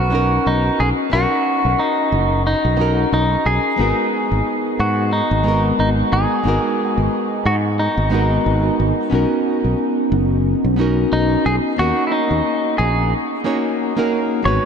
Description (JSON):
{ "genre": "sunset chillout", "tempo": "90 BPM", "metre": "4/4", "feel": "swing 56% on 16ths", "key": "G# minor", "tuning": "A4 = 440 Hz", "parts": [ { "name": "clean electric guitar", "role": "melody", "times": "0.0-14.7 s", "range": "D#4 to C#5", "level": "-20 LUFS", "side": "equal", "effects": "analog delay" }, { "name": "nylon-string guitar", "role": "accompaniment", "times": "0.0-14.7 s", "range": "G#3 to C#5", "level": "-20 LUFS", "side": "equal", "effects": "auto-pan, tape echo" }, { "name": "fretless electric bass", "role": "bass", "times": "0.0-14.6 s", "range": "F#1 to G#2", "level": "-19 LUFS", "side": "equal", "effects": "tube saturation" } ], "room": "wet huge ambient reverb, RT60 8.9 s", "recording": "dreamy mix soaked in reverb", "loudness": "-15 LUFS", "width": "side -7 dB against mid", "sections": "0.0-14.5 A section", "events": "none", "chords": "0.0 Bmaj9; 3.8 G#m7; 9.1 Bmaj9; 11.8 D#m7" }